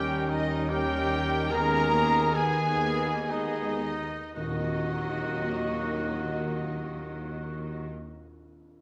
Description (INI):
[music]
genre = classical, slow romantic movement for symphony orchestra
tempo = 54-78 BPM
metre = 3/4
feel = rubato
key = Eb minor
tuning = A4 = 439 Hz
[part]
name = muted studio violin section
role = melody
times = 0.0-7.9 s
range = Eb5 to Bb5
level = -39 LUFS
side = equal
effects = none
[part]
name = mellow clarinet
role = second line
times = 0.0-7.9 s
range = Eb4 to Eb5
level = -39 LUFS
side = equal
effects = none
[part]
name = mellow hollow flute section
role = second line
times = 0.0-7.9 s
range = Eb5 to Bb5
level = -37 LUFS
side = equal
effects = none
[part]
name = muted studio violin section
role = second line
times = 0.0-7.9 s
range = Eb4 to Bb5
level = -40 LUFS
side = equal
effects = none
[part]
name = warm oboe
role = second line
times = 0.0-7.8 s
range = Eb4 to Bb4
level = -39 LUFS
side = equal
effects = none
[part]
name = muted studio viola section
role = accompaniment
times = 0.0-7.9 s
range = Gb3 to Db4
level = -39 LUFS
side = equal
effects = none
[part]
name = mellow French horn section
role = sustained chords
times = 0.0-7.9 s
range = Eb3 to Db4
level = -38 LUFS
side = equal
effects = none
[part]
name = concert harp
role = arpeggios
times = 0.0-8.3 s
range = Eb3 to Eb5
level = -41 LUFS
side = equal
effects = none
[part]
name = dark trumpet section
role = stabs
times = 0.0-7.9 s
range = Gb4 to Bb4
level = -39 LUFS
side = equal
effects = none
[part]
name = clear tuba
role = bass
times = 0.0-7.9 s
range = Eb2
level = -41 LUFS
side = equal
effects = none
[part]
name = muted studio cello section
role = bass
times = 0.0-7.9 s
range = Eb3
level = -39 LUFS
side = equal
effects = none
[part]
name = muted studio double bass section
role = bass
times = 0.0-7.9 s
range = Eb2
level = -42 LUFS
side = equal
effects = none
[part]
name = tam-tam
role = percussion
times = 4.4-8.2 s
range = none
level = -43 LUFS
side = equal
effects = none
[sound]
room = wet scoring stage reverb, RT60 1.5 s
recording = none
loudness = -28 LUFS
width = mono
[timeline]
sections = 0.0-4.4 A section; 4.4-8.8 B section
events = slowing down 0.0-4.4; band accent 4.4-5.3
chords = 0.0 Eb7; 1.5 Abm/Eb; 4.4 Ebm